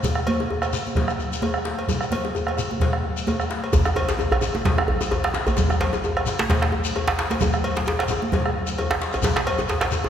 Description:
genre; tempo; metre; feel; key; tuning
west african traditional, West African drum ensemble; 131 BPM; 4/4; swing 55% on 16ths; none; none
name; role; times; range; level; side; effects
bombo; percussion; 0.0-10.1 s; none; -25 LUFS; right 1 dB; none
congas; percussion; 0.0-9.5 s; none; -30 LUFS; right 2 dB; none
djembe; percussion; 0.0-10.0 s; none; -27 LUFS; left 3 dB; none
shekere; percussion; 0.0-10.0 s; none; -32 LUFS; left 3 dB; none
cowbell; percussion; 0.3-9.9 s; none; -31 LUFS; left 2 dB; none
djembe; percussion; 3.7-10.1 s; none; -25 LUFS; right 1 dB; none
room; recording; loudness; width
wet church reverb, RT60 2.8 s; recorded in a church or concert hall; -20 LUFS; side -9 dB against mid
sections
0.0-3.7 A section; 3.7-10.1 B section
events
none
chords
none

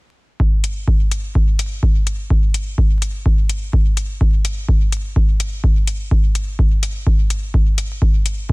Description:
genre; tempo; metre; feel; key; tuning
dub techno; 126 BPM; 4/4; straight; none; none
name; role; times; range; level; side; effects
electronic kick drum; drums; 0.4-8.5 s; none; -15 LUFS; equal; none
electronic hi-hat; drums; 0.6-8.4 s; none; -28 LUFS; left 4 dB; none
room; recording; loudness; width
digital ambience; dense, heavily limited modern master, vinyl crackle; -15 LUFS; side -27 dB against mid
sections
0.4-8.5 A section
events
none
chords
none

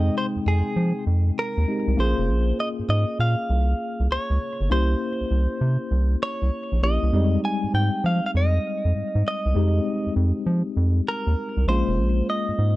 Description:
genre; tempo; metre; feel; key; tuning
R&B, new jack swing; 99 BPM; 4/4; swing 66% on 16ths; F minor; A4 = 439 Hz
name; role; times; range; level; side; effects
direct-recorded clean electric guitar; melody; 0.0-12.8 s; Ab4 to Ab5; -28 LUFS; right 1 dB; none
tine electric piano; accompaniment; 0.0-12.8 s; G3 to G5; -27 LUFS; left 2 dB; medium stereo tremolo
round analog bass; bass; 0.0-12.7 s; F1 to F3; -20 LUFS; equal; none
room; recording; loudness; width
digital ambience; dry, close 1970s-style studio recording; -20 LUFS; side -17 dB against mid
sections
0.0-12.8 A section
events
none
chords
0.0 Fm9; 2.0 Bbm9; 4.7 C7b9; 7.1 Fm9; 11.7 Bbm9

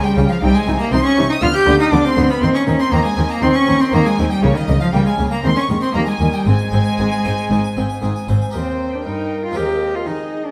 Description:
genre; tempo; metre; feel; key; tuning
classical, baroque-style concerto movement with solo episodes; 119 BPM; 4/4; straight; Ab major; A4 = 439 Hz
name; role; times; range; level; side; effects
rich cello; melody; 0.0-10.5 s; Db3 to G4; -20 LUFS; equal; none
rich chamber violin section; melody; 0.0-10.5 s; Db5 to G6; -28 LUFS; equal; none
clear chamber violin section; second line; 0.0-10.5 s; Db5 to G6; -29 LUFS; equal; none
harpsichord; accompaniment; 0.0-10.5 s; Eb2 to Ab5; -30 LUFS; equal; none
warm chamber viola section; accompaniment; 0.2-10.5 s; G3 to C5; -28 LUFS; equal; none
dark chamber double bass section; bass; 0.2-8.4 s; Ab1 to Eb2; -23 LUFS; equal; none
warm chamber cello section; bass; 0.2-10.5 s; Eb2 to Eb3; -24 LUFS; equal; none
room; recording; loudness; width
moderate recital hall reverb, RT60 1.8 s; none; -17 LUFS; mono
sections
0.0-8.6 A section; 8.6-10.5 B section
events
none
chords
0.4 Cm; 1.4 G7/D; 2.4 Cm/Eb; 4.4 Bbm/Db; 5.4 Ab5/Eb; 5.9 Eb; 6.5 Ab; 8.6 Eb; 9.6 Fm7/Eb

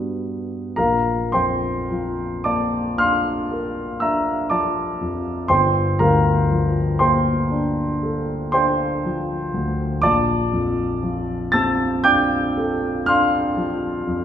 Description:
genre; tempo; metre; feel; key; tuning
classical, impressionist solo piano; 33-41 BPM (dotted quarters); 9/8; rubato; Bb lydian; A4 = 441 Hz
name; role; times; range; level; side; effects
warm grand piano; solo; 0.0-14.2 s; G1 to A6; -18 LUFS; equal; none
room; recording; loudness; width
wet recital hall reverb, RT60 1.4 s; heard from further back in the room; -18 LUFS; side -9 dB against mid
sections
0.8-14.2 A section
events
none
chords
0.0 Gmaj7; 0.8 Bbadd9; 5.5 Gm11; 10.0 Bbmaj9

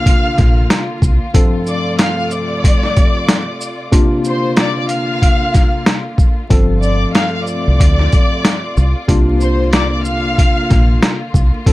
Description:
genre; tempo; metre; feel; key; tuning
hip hop, boom-bap hip-hop; 93 BPM; 4/4; swing 60% on 16ths; unclear; A4 = 440 Hz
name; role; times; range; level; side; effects
warm studio violin section; melody; 0.0-11.0 s; C5 to F6; -20 LUFS; left 1 dB; high-pass filter, low-pass filter, tape echo
mellow tine electric piano; accompaniment; 0.0-11.7 s; G2 to A4; -19 LUFS; left 1 dB; medium stereo tremolo, cassette tape, high-pass filter, low-pass filter
rich studio string section; sustained chords; 0.0-11.7 s; C3 to F4; -26 LUFS; equal; high-pass filter, low-pass filter
boom bap sampler-style drum kit; drums; 0.1-11.7 s; hi-hat, kick drum, shaker, snare drum; -12 LUFS; equal; none
deep dub fingered electric bass; bass; 0.4-1.2, 6.5-11.5 s; G1 to D2; -14 LUFS; equal; none
room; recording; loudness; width
little or no reverb; vinyl crackle; -11 LUFS; side -18 dB against mid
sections
0.0-11.7 A section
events
none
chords
0.0 C9sus4; 1.3 G9sus4; 3.9 C9sus4; 6.5 G9sus4; 9.1 C9sus4

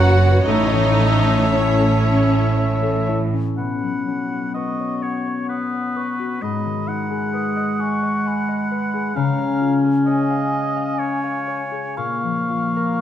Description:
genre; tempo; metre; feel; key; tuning
cinematic; 57-68 BPM; 3/4; rubato; unclear; A4 = 441 Hz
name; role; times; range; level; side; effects
rich studio violin section; melody; 0.0-3.1 s; C#5 to F#5; -29 LUFS; left 3 dB; none
clear clarinet; second line; 0.0-13.0 s; G#3 to C#5; -24 LUFS; equal; none
clear oboe; second line; 0.0-13.0 s; B4 to F#5; -27 LUFS; right 1 dB; none
mellow hollow concert flute; second line; 0.0-13.0 s; G#5 to D#6; -29 LUFS; left 1 dB; none
rich studio violin section; second line; 0.0-3.0 s; B4 to C#5; -29 LUFS; left 2 dB; none
clear symphonic viola section; accompaniment; 0.0-3.1 s; C#4 to F#4; -23 LUFS; right 2 dB; none
concert harp; arpeggios; 0.0-13.0 s; F#2 to A#5; -24 LUFS; left 6 dB; none
rich symphonic cello section; bass; 0.0-3.3 s; F#2 to A2; -21 LUFS; right 2 dB; none
rich symphonic double bass section; bass; 0.0-3.3 s; F#1 to A1; -21 LUFS; right 2 dB; none
room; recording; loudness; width
wet scoring stage reverb, RT60 1.7 s; none; -18 LUFS; side -10 dB against mid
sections
0.0-3.6 A section; 3.6-13.0 B section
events
none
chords
0.5 A; 3.6 Bsus2; 6.4 G#m; 9.2 C#; 12.0 A#m

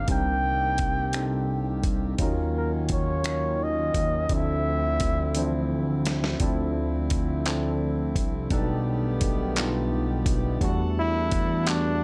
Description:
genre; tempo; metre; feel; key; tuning
slow six-eight R&B; 57 BPM (dotted quarters); 6/8; straight; unclear; A4 = 440 Hz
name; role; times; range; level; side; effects
breathy flugelhorn; melody; 0.0-5.7, 11.0-12.0 s; D4 to G5; -30 LUFS; equal; plate reverb
tine electric piano; accompaniment; 0.0-12.0 s; E3 to C5; -32 LUFS; equal; overdrive, plate reverb
pedal harmonium; sustained chords; 0.0-12.0 s; D3 to A5; -38 LUFS; equal; plate reverb
fat analog bass; bass; 0.0-12.0 s; B1 to E2; -30 LUFS; equal; none
dusty soul sampler-style drum kit; drums; 0.1-11.8 s; finger snaps, handclaps, hi-hat, kick drum, snare drum; -30 LUFS; equal; none
room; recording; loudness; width
light reverb; none; -26 LUFS; mono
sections
0.0-6.4 A section; 6.4-10.6 B section; 10.6-12.0 C section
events
drum fill 5.3-6.4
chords
0.0 Cm9; 2.2 D#m9; 4.3 Dm9; 8.5 B7alt; 10.6 Em11

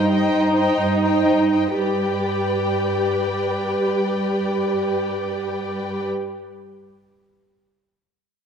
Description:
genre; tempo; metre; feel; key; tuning
quick classical-period movement for string orchestra; 122 BPM; 4/4; rubato; G major; A4 = 441 Hz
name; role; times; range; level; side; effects
warm symphonic violin section; melody; 0.0-6.1 s; G5; -30 LUFS; left 5 dB; none
warm symphonic violin section; second line; 0.0-6.1 s; B4 to Eb5; -26 LUFS; left 2 dB; none
dark symphonic viola section; accompaniment; 0.0-6.0 s; Eb4 to G4; -21 LUFS; right 1 dB; none
rich symphonic cello section; bass; 0.0-6.0 s; G2; -26 LUFS; right 2 dB; none
room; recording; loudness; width
wet scoring stage reverb, RT60 1.8 s; dark, warm production; -19 LUFS; side -7 dB against mid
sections
0.0-1.8 A section; 1.8-5.7 B section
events
slowing down 0.0-1.8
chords
0.0 Cm/G; 1.8 G

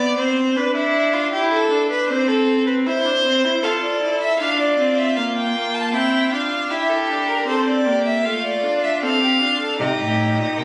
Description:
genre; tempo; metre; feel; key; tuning
classical, baroque-style fugue for string quartet; 78 BPM; 4/4; straight; F major; A4 = 440 Hz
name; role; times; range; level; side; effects
rich violin; second line; 0.0-10.6 s; E4 to D5; -24 LUFS; equal; none
rich viola; accompaniment; 0.0-10.6 s; A3 to F4; -24 LUFS; equal; none
clear violin; melody; 3.6-10.6 s; A4 to A5; -23 LUFS; equal; none
clear cello; bass; 9.8-10.6 s; A2 to C3; -24 LUFS; equal; none
room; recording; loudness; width
wet recital hall reverb, RT60 1.6 s; recorded on a phone in the room, studio reverb; -19 LUFS; mono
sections
0.0-9.8 A section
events
none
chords
0.0 Cmaj7sus2/B; 0.6 G/D (rootless); 2.1 C; 3.6 F; 5.2 Gm7/Bb; 6.7 C7; 8.3 F/A; 9.8 Cm (rootless)

